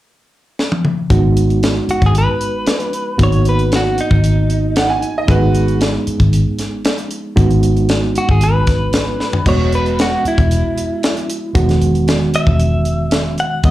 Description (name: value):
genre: straight-eighth soul blues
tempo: 115 BPM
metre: 4/4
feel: straight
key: G# minor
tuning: A4 = 440 Hz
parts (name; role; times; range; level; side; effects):
- tight funk drum kit; drums; 0.6-13.7 s; crash cymbal, hi-hat, kick drum, snare drum, toms; -18 LUFS; left 1 dB; none
- overdriven reed electric piano; accompaniment; 1.1-13.7 s; D#3 to F#5; -19 LUFS; right 3 dB; fast tremolo, slapback echo
- vintage muted fingered electric bass; bass; 1.1-13.7 s; E1 to D#2; -15 LUFS; equal; none
- direct-recorded clean electric guitar; melody; 1.9-13.7 s; D#4 to F#5; -20 LUFS; equal; harmonic tremolo, slapback echo
- bright upright piano; second line; 4.8-5.8 s; F#4 to G#5; -18 LUFS; right 3 dB; slapback echo
room: light reverb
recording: live gig heard through the venue's PA, club reverb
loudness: -12 LUFS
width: side -15 dB against mid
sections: 0.0-1.1 A section; 1.1-13.7 B section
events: drum fill 0.6-1.1, 9.2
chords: 0.0 N.C.; 1.1 G#m7; 9.5 Emaj7